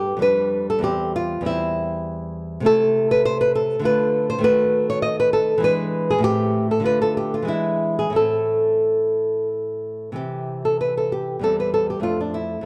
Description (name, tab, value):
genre	classical, baroque-style dance for nylon-string guitar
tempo	86-102 BPM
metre	3/4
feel	rubato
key	A minor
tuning	A4 = 440 Hz
part	nylon-string guitar	solo	0.0-12.7 s	E2 to D#5	-21 LUFS	equal	none
room	moderate recital hall reverb, RT60 1.6 s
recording	dark, warm production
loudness	-21 LUFS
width	mono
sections	0.0-10.2 A section; 10.2-12.7 A section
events	none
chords	0.2 G7/F; 0.8 C/E; 2.7 Am/C; 3.8 Dm; 4.4 D#dim; 5.6 E7; 6.3 Am; 6.9 Dm; 7.5 E7; 8.2 Am; 10.2 C; 11.4 C/E; 12.0 Dm/F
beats	0.23 | 0.85 1.47 2.06 | 2.66 3.26 3.85 | 4.44 5.04 5.64 | 6.25 6.87 7.50 | 8.16 8.86 9.52 | 10.16 10.81 11.44 | 12.05